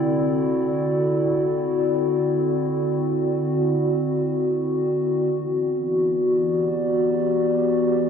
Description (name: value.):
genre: ambient.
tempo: free time.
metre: none.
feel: none.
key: E minor.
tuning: A4 = 442 Hz.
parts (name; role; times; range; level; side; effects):
warbly tape-like pad; solo; 0.0-8.1 s; D3 to D5; -20 LUFS; equal; chorus, built-in reverb, ping-pong delay.
room: wet huge ambient reverb, RT60 7.7 s.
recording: none.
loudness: -20 LUFS.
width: side -7 dB against mid.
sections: 0.0-5.3 A section; 5.3-8.1 B section.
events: none.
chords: 0.0 D9; 5.3 Em7.